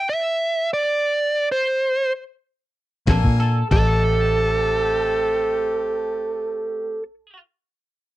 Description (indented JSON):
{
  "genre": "straight-eighth soul blues",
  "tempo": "free time",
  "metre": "none",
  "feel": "none",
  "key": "A minor",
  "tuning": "A4 = 440 Hz",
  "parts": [
    { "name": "dark smooth lead guitar", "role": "melody", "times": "0.0-7.0 s", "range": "A4 to E5", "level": "-20 LUFS", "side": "right 2 dB", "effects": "overdrive" },
    { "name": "electric guitar through a small old amp", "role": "second line", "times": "3.1-7.4 s", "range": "A4", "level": "-29 LUFS", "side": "equal", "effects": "analog chorus" },
    { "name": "bright horn section", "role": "sustained chords", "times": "3.1-7.0 s", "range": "A3 to Ab5", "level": "-30 LUFS", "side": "left 3 dB", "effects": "none" },
    { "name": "vintage muted fingered electric bass", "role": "bass", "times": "3.1-7.4 s", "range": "A1 to Bb2", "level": "-21 LUFS", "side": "left 1 dB", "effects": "none" },
    { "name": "lo-fi sampler-style drum kit", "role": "drums", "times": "3.1-3.9 s", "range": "crash cymbal, hi-hat, kick drum, snare drum", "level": "-21 LUFS", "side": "left 1 dB", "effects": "none" }
  ],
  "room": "little or no reverb",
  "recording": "dry, close 1970s-style studio recording",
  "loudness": "-18 LUFS",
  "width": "side -16 dB against mid",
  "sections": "0.0-3.7 A section; 3.7-6.3 B section",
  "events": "stop 0.0-3.1",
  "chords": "0.0 N.C.; 3.1 Bb7; 3.7 Am7",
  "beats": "free time"
}